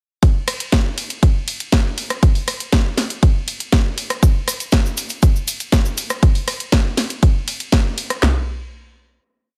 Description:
house; 120 BPM; 4/4; straight
house drum kit; drums; 0.2-8.3 s; handclaps, kick drum, snare drum, toms; -17 LUFS; equal
house drum kit; drums; 0.2-8.2 s; hi-hat, ride cymbal, rim click, snare drum; -24 LUFS; equal
cabasa; percussion; 4.2-6.2 s; -30 LUFS; equal
little or no reverb; -18 LUFS; mono
0.2-8.2 drop; 8.2-9.6 final hit
drop 0.2-8.2
| 0.23 0.73 1.23 1.73 | 2.23 2.73 3.23 3.73 | 4.23 4.73 5.23 5.73 | 6.23 6.73 7.23 7.73 | 8.23

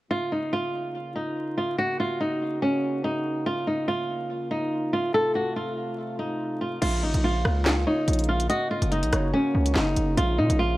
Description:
hip hop, drill; 143 BPM; 4/4; half-time; Bb harmonic minor; A4 = 440 Hz
flamenco guitar; melody; 0.1-10.8 s; Db4 to A4; -25 LUFS; equal; low-pass filter, digital delay
mellow French horn section; sustained chords; 0.1-10.8 s; C3 to Gb4; -34 LUFS; equal
distorted 808-style bass; bass; 6.8-10.8 s; Gb1 to Bb2; -24 LUFS; equal; distortion
drill drum kit; drums; 6.8-10.6 s; crash cymbal, handclaps, hi-hat, rim click, snare drum; -28 LUFS; left 1 dB
soft round pluck; second line; 7.9-9.3 s; Db5 to F5; -33 LUFS; left 1 dB; chorus, digital delay
digital ambience; vinyl crackle; -23 LUFS; side -17 dB against mid
0.1-6.8 A section; 6.8-10.8 B section
0.1 Bbm; 1.8 Gb; 3.5 Bbm; 5.1 F; 6.8 Bbm; 8.5 Gb; 10.2 Bbm
| 0.11 0.53 0.95 1.36 | 1.78 2.20 2.62 3.04 | 3.46 3.88 4.30 4.72 | 5.14 5.56 5.98 6.40 | 6.82 7.24 7.66 8.08 | 8.50 8.92 9.34 9.76 | 10.18 10.60

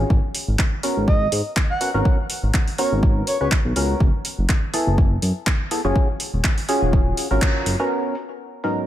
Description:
deep house; 123 BPM; 4/4; swing 55% on 16ths; G# minor; A4 = 440 Hz
percussive organ stab; stabs; 0.0-8.9 s; G#2 to B4; -24 LUFS; equal; analog chorus, cassette tape, sidechain pumping, ping-pong delay
smooth synth bass; bass; 0.0-7.8 s; D#1 to G#2; -21 LUFS; equal; sidechain pumping
electronic kick drum; drums; 0.1-7.5 s; -19 LUFS; equal; overdrive
deep house drum kit; drums; 0.3-8.7 s; handclaps, hi-hat; -26 LUFS; equal; low-pass filter on hats, low-pass filter on snare
breathy flute-like synth lead; melody; 1.1-3.5 s; C#5 to F#5; -26 LUFS; right 2 dB; chorus, dub echo
light reverb, digital ambience; -18 LUFS; side -12 dB against mid
0.0-7.9 A section
filter sweep on synth stab 0.0-7.9; band accent 7.4
0.1 G#m11; 4.0 F#m11; 6.0 D#m11; 7.9 G#m11
| 0.10 0.59 1.08 1.56 | 2.05 2.54 3.03 3.52 | 4.00 4.49 4.98 5.47 | 5.96 6.44 6.93 7.42 | 7.91 8.39

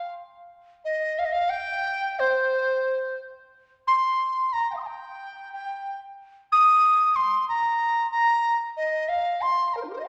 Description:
chinese traditional; 91 BPM; 4/4; rubato; C yu mode; A4 = 440 Hz
mellow large dizi; solo; 0.0-10.1 s; Eb4 to Eb6; -24 LUFS; equal
moderate concert hall reverb, RT60 2.2 s; -24 LUFS; mono
0.0-10.1 A section
0.18 | 0.84 1.50 2.17 2.85 | 3.52 4.19 4.86 5.52 | 6.19 6.85 7.50 8.14 | 8.78 9.43 10.07

